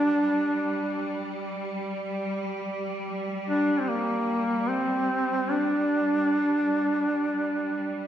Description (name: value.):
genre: caucasian folk, Caucasian lament.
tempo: free time.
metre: none.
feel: none.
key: G minor.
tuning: A4 = 439 Hz.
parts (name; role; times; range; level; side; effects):
warm duduk; melody; 0.0-8.1 s; Bb3 to D4; -24 LUFS; equal; none.
bright symphonic cello section; drone; 0.0-8.1 s; G3; -32 LUFS; right 1 dB; none.
room: wet recital hall reverb, RT60 1.5 s.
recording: recorded in a church or concert hall.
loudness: -24 LUFS.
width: side -10 dB against mid.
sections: 0.0-8.1 A section.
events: none.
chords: none.